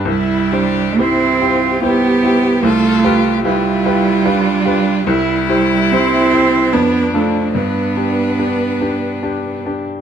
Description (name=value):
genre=classical, slow romantic movement for piano quartet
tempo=72 BPM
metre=3/4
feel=uneven beats, rubato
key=C major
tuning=A4 = 440 Hz
part: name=bright baby grand piano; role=accompaniment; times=0.0-10.0 s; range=C2 to C5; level=-18 LUFS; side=left 2 dB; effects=none
part: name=rich viola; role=accompaniment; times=0.0-9.8 s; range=D4 to G4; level=-21 LUFS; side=right 2 dB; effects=none
part: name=rich violin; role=melody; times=0.1-9.6 s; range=D4 to B4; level=-24 LUFS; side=left 7 dB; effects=none
part: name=clear cello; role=second line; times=0.1-9.7 s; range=G3 to C4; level=-16 LUFS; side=right 5 dB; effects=none
room=light reverb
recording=close, detailed microphones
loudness=-12 LUFS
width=side -8 dB against mid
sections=0.1-10.0 A section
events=none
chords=0.1 C; 2.6 G7/C; 5.1 C; 6.7 Dm/F; 7.5 G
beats=| 0.07 0.99 1.82 | 2.63 3.45 4.25 | 5.06 5.91 6.72 | 7.55 8.38 9.23